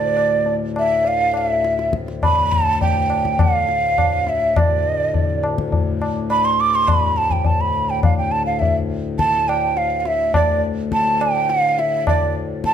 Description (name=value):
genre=indian classical, Hindustani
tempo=104 BPM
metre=4/4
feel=straight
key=D raga kafi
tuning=A4 = 440 Hz
part: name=breathy hollow bansuri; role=melody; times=0.0-12.7 s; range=D5 to D6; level=-18 LUFS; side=right 2 dB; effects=none
part: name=pedal harmonium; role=drone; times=0.0-12.7 s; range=D2 to A2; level=-25 LUFS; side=left 4 dB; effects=none
part: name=tabla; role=percussion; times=0.2-12.7 s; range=none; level=-21 LUFS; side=left 3 dB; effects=none
room=moderate recital hall reverb, RT60 1.4 s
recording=none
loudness=-16 LUFS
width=side -9 dB against mid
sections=0.0-12.7 A section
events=speeding up 0.0-12.7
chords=none